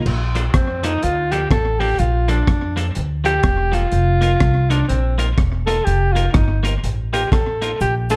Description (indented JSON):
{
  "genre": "ska",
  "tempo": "124 BPM",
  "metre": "4/4",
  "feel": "swing 61% on 8ths",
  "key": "Bb major",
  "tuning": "A4 = 442 Hz",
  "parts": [
    { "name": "upright bass", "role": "bass", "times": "0.1-8.2 s", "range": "E1 to F2", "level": "-22 LUFS", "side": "equal", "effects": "none" },
    { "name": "crunchy breakbeat drum kit", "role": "drums", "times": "0.1-8.2 s", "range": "crash cymbal, hi-hat, kick drum, rim click", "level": "-23 LUFS", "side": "equal", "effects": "none" },
    { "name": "clean electric guitar", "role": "accompaniment", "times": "0.3-8.2 s", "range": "F3 to Bb4", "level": "-29 LUFS", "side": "equal", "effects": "slapback echo" },
    { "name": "warm alto saxophone", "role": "melody", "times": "0.5-8.2 s", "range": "C4 to A4", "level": "-23 LUFS", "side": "equal", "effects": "slapback echo" },
    { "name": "cabasa", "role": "percussion", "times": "7.8-8.2 s", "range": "none", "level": "-43 LUFS", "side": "equal", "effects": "none" }
  ],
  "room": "light reverb, small room ambience",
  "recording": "dark, warm production",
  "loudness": "-18 LUFS",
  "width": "mono",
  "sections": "0.1-8.2 A section",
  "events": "alto saxophone solo 0.1-8.2",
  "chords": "0.1 Bbmaj7; 3.9 F7sus4"
}